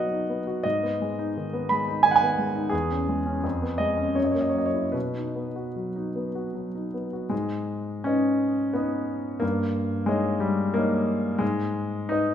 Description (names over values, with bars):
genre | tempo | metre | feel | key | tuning
classical, romantic character piece for solo piano | 72-93 BPM | 3/4 | rubato | B major, G# minor from 7.3 s | A4 = 438 Hz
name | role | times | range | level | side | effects
warm concert grand piano | solo | 0.0-12.3 s | E2 to B5 | -23 LUFS | equal | none
room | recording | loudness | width
wet recital hall reverb, RT60 1.5 s | none | -24 LUFS | side -9 dB against mid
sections
0.0-7.3 A section; 7.3-12.3 B section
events
none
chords
0.0 B; 0.6 G#m; 2.7 C#m/E; 3.4 C#7/E#; 4.2 F#7; 4.9 B; 7.3 G#m; 9.4 D#7/G; 11.4 G#m